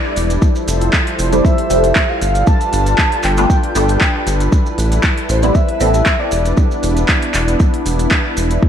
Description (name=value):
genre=deep house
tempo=117 BPM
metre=4/4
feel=swing 53% on 16ths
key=unclear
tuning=A4 = 440 Hz
part: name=breathy flute-like synth lead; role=melody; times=0.0-6.6 s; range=C5 to A5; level=-21 LUFS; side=equal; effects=analog chorus, diffuse ambient delay
part: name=warm analog pad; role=sustained chords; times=0.0-8.7 s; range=F3 to D5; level=-20 LUFS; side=equal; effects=wide subtle chorus, sidechain pumping
part: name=filtered dub chord stab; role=stabs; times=0.0-6.3 s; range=G3 to A4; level=-20 LUFS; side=equal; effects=phaser, ensemble chorus, sidechain pumping, diffuse ambient delay
part: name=round analog bass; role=bass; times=0.2-8.6 s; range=E1 to A1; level=-16 LUFS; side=equal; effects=sidechain pumping
part: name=deep house drum kit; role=drums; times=0.2-8.6 s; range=handclaps, hi-hat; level=-20 LUFS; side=equal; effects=small room ambience
part: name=maracas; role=percussion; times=0.2-8.6 s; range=none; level=-30 LUFS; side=right 4 dB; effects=none
part: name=electronic kick drum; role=drums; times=0.4-8.7 s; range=none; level=-14 LUFS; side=equal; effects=small room ambience
room=moderate lush hall reverb, RT60 1.6 s, digital ambience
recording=dreamy mix soaked in reverb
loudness=-12 LUFS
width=side -9 dB against mid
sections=0.0-8.7 A section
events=none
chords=0.4 Fmaj9; 2.2 G9; 4.5 Am9; 6.3 Em7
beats=| 0.42 0.93 1.45 1.96 | 2.47 2.98 3.50 4.01 | 4.52 5.04 5.55 6.06 | 6.57 7.09 7.60 8.11 | 8.63